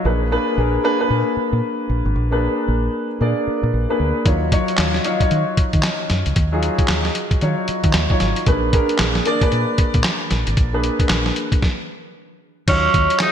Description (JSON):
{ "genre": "R&B, new jack swing", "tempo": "114 BPM", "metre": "4/4", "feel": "swing 61% on 16ths", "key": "unclear", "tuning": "A4 = 441 Hz", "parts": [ { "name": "warm concert grand piano", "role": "accompaniment", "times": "0.0-13.3 s", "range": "F3 to D5", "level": "-20 LUFS", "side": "left 1 dB", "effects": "wide subtle chorus" }, { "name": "deep dub fingered electric bass", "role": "bass", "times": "0.0-13.1 s", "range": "Ab1 to Eb3", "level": "-20 LUFS", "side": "equal", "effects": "none" }, { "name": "dusty soul sampler-style drum kit", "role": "drums", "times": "4.3-13.3 s", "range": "crash cymbal, handclaps, hi-hat, kick drum, snare drum", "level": "-19 LUFS", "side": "equal", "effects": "gated reverb" }, { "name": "raspy tenor saxophone", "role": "melody", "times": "12.7-13.3 s", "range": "Db4 to Eb4", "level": "-16 LUFS", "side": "right 3 dB", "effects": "none" }, { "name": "cowbell", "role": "percussion", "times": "12.7-13.3 s", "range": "none", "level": "-34 LUFS", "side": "left 8 dB", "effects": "none" } ], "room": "moderate lush hall reverb, RT60 1.7 s, small room reverb", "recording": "bright 1980s-style digital production", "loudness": "-16 LUFS", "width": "side -8 dB against mid", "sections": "0.0-12.7 A section", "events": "stop 11.6-12.7", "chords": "0.0 Bb7b9; 4.3 Ebm9; 8.5 Bb7b9; 12.7 Ebm9", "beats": "| 0.05 0.57 1.10 1.62 | 2.15 2.68 3.20 3.73 | 4.26 4.78 5.31 5.83 | 6.36 6.89 7.41 7.94 | 8.47 8.99 9.52 10.05 | 10.57 11.10 11.62 12.15 | 12.68 13.20" }